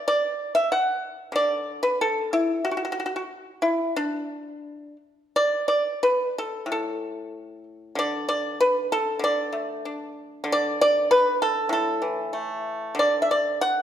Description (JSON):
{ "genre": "chinese traditional, Chinese solo plucked strings", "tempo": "84-99 BPM", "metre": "4/4", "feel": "rubato", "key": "D gong mode", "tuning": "A4 = 441 Hz", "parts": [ { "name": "pipa", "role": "solo", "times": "0.0-13.8 s", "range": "A2 to F#5", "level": "-22 LUFS", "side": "equal", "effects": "none" } ], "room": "wet recital hall reverb, RT60 1.6 s", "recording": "none", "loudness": "-22 LUFS", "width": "side -10 dB against mid", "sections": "0.0-5.3 A section; 5.3-13.8 B section", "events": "none", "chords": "none", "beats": "| 0.08 0.71 1.35 1.98 | 2.62 3.28 3.95 4.64 | 5.33 6.00 6.68 7.33 | 7.97 8.60 9.21 9.83 | 10.45 11.07 11.69 12.31 | 12.94 13.59" }